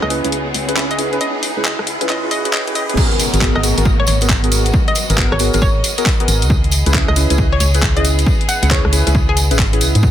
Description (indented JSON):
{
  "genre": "UK garage, two-step garage",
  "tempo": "136 BPM",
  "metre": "4/4",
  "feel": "swing 64% on 16ths",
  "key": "unclear",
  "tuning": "A4 = 443 Hz",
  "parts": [
    { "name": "hollow square pluck", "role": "melody", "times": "0.0-9.6 s", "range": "G#4 to F#5", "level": "-24 LUFS", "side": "left 1 dB", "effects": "chorus, digital delay" },
    { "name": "rich studio violin section", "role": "sustained chords", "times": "0.0-10.1 s", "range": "B3 to D#5", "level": "-28 LUFS", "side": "equal", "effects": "sidechain pumping" },
    { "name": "deep mellow chord stab", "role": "stabs", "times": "0.0-10.0 s", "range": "B3 to B4", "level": "-21 LUFS", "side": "equal", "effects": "chorus, digital delay" },
    { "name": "organ-like FM bass", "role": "bass", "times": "0.0-10.1 s", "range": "G#1 to G#2", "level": "-16 LUFS", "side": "equal", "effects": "none" },
    { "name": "garage drum kit", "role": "drums", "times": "0.0-10.0 s", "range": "crash cymbal, handclaps, hi-hat, rim click", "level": "-20 LUFS", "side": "left 1 dB", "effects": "soft clipping on snare" },
    { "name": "riser and downlifter", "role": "sound effects", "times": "0.0-6.5 s", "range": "none", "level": "-26 LUFS", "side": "equal", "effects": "none" },
    { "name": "granular cloud pad", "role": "texture", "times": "0.0-3.0 s", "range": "G#4 to B5", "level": "-30 LUFS", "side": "right 1 dB", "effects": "built-in reverb, sidechain pumping" },
    { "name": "electronic kick drum", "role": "drums", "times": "3.0-10.1 s", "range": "none", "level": "-17 LUFS", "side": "equal", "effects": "overdrive" },
    { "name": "tambourine", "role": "percussion", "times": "3.0-10.1 s", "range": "none", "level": "-25 LUFS", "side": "right 5 dB", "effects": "none" }
  ],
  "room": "light reverb",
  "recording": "dense, heavily limited modern master, high-pass filter",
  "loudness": "-13 LUFS",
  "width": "side -11 dB against mid",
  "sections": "0.0-3.0 A section; 3.0-10.1 B section",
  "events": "build-up 0.0-3.0; riser 0.0-3.0; drop 3.0-10.1",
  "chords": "0.0 C#m7; 3.0 G#m9; 6.5 C#m7"
}